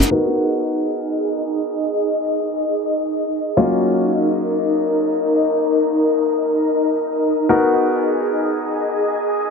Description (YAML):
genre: UK garage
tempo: free time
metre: none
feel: none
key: G# dorian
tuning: A4 = 440 Hz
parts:
  - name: ethereal airy pad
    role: sustained chords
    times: 0.0-9.5 s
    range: D#4 to G#5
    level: -24 LUFS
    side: equal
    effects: ensemble chorus, built-in reverb, phaser
  - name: airy breathy pad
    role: texture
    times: 0.0-9.5 s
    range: D#4 to F#5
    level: -20 LUFS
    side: left 1 dB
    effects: chorus
  - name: bright concert grand piano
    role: stabs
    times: 0.1-9.5 s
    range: F#3 to A#4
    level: -20 LUFS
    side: left 2 dB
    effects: dub echo
room: wet plate reverb, RT60 1.3 s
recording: echo-heavy mix, low-pass filter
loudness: -16 LUFS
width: side -5 dB against mid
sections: 0.1-9.5 A section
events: none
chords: 0.1 G#m7; 3.6 D#m7; 7.5 G#m7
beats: free time